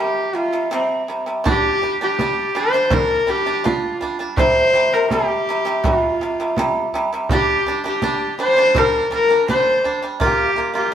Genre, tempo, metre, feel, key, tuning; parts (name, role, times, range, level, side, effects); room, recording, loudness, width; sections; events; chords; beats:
mongolian traditional, Mongolian folk; 82 BPM; 4/4; straight; A4 = 438 Hz
rich horsehead fiddle; melody; 0.0-10.9 s; C4 to C5; -18 LUFS; left 1 dB
pipa; arpeggios; 0.0-10.9 s; C3 to F4; -21 LUFS; right 2 dB
frame drum; percussion; 1.5-10.7 s; -23 LUFS; right 2 dB
wet stone room reverb, RT60 1.1 s; band playing live in one room; -16 LUFS; side -9 dB against mid
0.0-1.5 A section; 1.5-10.9 B section
0.0 C5; 1.5 G5; 4.4 C5; 7.3 G5; 10.2 Bb5
0.72 | 1.45 2.19 2.92 3.65 | 4.38 5.11 5.84 6.57 | 7.30 8.03 8.75 9.48 | 10.21 10.93